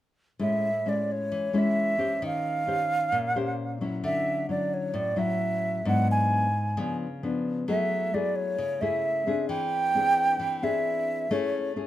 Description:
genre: bossa nova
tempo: 132 BPM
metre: 4/4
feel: straight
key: A major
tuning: A4 = 441 Hz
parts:
  - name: breathy mellow concert flute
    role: melody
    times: 0.4-11.7 s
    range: C#5 to G#5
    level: -26 LUFS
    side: right 2 dB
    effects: none
  - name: nylon-string guitar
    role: accompaniment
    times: 0.4-11.9 s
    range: G#2 to C5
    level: -28 LUFS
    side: left 3 dB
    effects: none
room: moderate large studio reverb, RT60 1.2 s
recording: minimal, uncompressed stereo recording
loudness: -24 LUFS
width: side -13 dB against mid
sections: 0.4-11.9 A section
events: none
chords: 0.4 Amaj7; 2.2 D#13; 4.0 Dmaj9; 5.8 G#m7b5; 6.8 C#7b9; 7.7 F#m9; 9.5 E7alt; 11.3 Amaj7

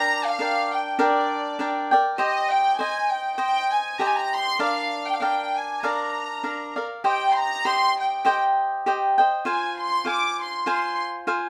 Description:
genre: mexican folk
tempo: 100 BPM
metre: 4/4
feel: swing 53% on 8ths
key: unclear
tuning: A4 = 440 Hz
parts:
  - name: warm studio violin section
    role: melody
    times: 0.0-11.0 s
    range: D5 to D6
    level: -26 LUFS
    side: equal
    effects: none
  - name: cavaquinho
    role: accompaniment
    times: 0.0-11.5 s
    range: D4 to Ab5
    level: -26 LUFS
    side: equal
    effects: none
room: light reverb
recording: none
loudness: -23 LUFS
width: mono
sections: 0.0-11.5 A section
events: none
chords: 0.0 Gm; 2.2 Cm; 4.6 Bb; 7.0 Cm; 9.5 Fm

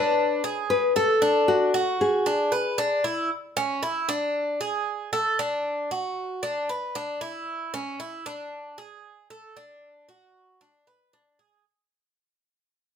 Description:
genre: latin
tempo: 115 BPM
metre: 4/4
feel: straight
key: unclear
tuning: A4 = 440 Hz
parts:
  - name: nylon-string guitar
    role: melody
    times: 0.0-3.0 s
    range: F#4 to B4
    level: -23 LUFS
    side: left 3 dB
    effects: none
  - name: Cuban tres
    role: arpeggios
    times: 0.0-11.6 s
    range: C#4 to B4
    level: -26 LUFS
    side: right 1 dB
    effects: none
room: moderate large studio reverb, RT60 0.8 s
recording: none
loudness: -23 LUFS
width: side -7 dB against mid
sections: 0.0-3.3 A section; 3.3-11.6 B section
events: fade-out 3.3-11.6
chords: 0.2 G#dim/D; 1.2 D; 2.3 E7; 3.3 C#m; 4.3 D5; 5.4 D; 6.4 E5; 7.5 C#m; 8.5 D5; 9.6 D; 10.6 G#dim/D

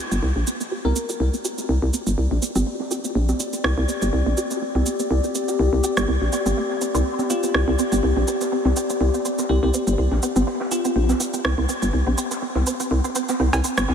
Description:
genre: minimal techno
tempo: 123 BPM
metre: 4/4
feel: swing 55% on 16ths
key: unclear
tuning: A4 = 439 Hz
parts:
  - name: resonant blip pluck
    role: riff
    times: 0.0-13.9 s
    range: Bb3 to G4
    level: -26 LUFS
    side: right 2 dB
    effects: ensemble chorus, ping-pong delay
  - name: warbly tape-like pad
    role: texture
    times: 1.6-13.9 s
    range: C4 to D5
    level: -27 LUFS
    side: left 3 dB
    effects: chorus, built-in reverb
  - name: hollow knocking FM bass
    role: bass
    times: 0.1-13.9 s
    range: G1 to C2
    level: -20 LUFS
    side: equal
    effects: none
  - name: big rock drum kit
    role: drums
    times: 0.1-13.9 s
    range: hi-hat, shaker, snare drum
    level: -45 LUFS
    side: right 1 dB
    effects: none
  - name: shaker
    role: drums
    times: 0.1-13.9 s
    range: none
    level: -31 LUFS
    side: right 4 dB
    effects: none
  - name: bell-like FM electric piano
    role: melody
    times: 0.8-1.3, 7.3-11.1 s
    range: F4 to Bb4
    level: -32 LUFS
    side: left 3 dB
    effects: chorus, phaser, diffuse ambient delay
  - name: electronic congas, rim click and cowbell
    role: percussion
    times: 0.8-13.9 s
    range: none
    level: -28 LUFS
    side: right 2 dB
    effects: diffuse ambient delay
room: moderate huge ambient reverb, RT60 4.8 s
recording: dreamy mix soaked in reverb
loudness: -19 LUFS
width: side -8 dB against mid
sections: 0.0-13.9 A section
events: none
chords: 0.0 C5

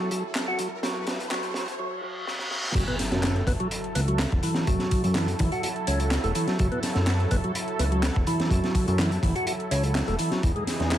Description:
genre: breakbeat, breaks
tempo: 125 BPM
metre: 4/4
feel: straight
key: F# minor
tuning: A4 = 440 Hz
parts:
  - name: lush unison pad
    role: sustained chords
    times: 0.0-11.0 s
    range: E3 to A4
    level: -32 LUFS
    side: right 1 dB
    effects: chorus, sidechain pumping
  - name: percussive tonewheel organ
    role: riff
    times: 0.0-10.6 s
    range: E3 to F#4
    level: -29 LUFS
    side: equal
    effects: slow rotary speaker, ping-pong delay
  - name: riser, reverse cymbal and impact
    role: sound effects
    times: 0.0-4.7 s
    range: none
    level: -34 LUFS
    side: equal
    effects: none
  - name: crunchy breakbeat drum kit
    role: drums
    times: 0.1-11.0 s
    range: crash cymbal, hi-hat, kick drum, snare drum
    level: -28 LUFS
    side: equal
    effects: none
  - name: garage drum kit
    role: drums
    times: 0.3-11.0 s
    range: handclaps, hi-hat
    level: -36 LUFS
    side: left 1 dB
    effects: none
  - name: fat analog bass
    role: bass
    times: 2.7-11.0 s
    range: E1 to F#2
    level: -26 LUFS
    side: equal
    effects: tube saturation
room: studio reverb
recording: vinyl crackle, high-pass filter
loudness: -23 LUFS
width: side -11 dB against mid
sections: 0.0-2.8 A section; 2.8-11.0 B section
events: build-up 0.0-2.8; drum fill 0.0-1.8, 2.3-2.8; riser 0.0-1.8; filter sweep on tonewheel organ 0.0-2.8; filter sweep 0.0-2.8; reverse cymbal 1.8-2.8; drop 2.8-11.0; impact 2.8-4.7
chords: 0.0 F#m7; 10.4 Emaj7

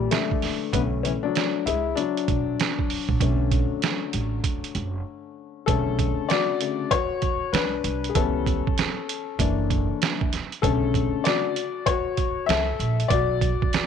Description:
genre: hip hop, jazz-hop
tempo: 97 BPM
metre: 4/4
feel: swing 63% on 16ths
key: B minor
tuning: A4 = 436 Hz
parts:
  - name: warm upright piano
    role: accompaniment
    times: 0.0-13.9 s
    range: C#3 to E5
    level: -25 LUFS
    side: left 9 dB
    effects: none
  - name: upright bass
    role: bass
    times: 0.0-13.5 s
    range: F#1 to C#2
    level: -27 LUFS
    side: right 2 dB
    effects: none
  - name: trip hop sampler-style drum kit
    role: drums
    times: 0.1-13.9 s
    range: hi-hat, kick drum, snare drum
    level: -26 LUFS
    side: right 5 dB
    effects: none
room: digital ambience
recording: 1960s-style stereo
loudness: -22 LUFS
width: side -7 dB against mid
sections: 0.0-5.7 A section; 5.7-13.9 B section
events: upright piano solo 0.0-5.7, 5.7-13.9; break 5.1-5.7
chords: 0.0 F#7#9b13 (rootless); 0.7 Bm9; 8.2 C#m7b5; 9.4 F#7alt; 10.6 Bm9

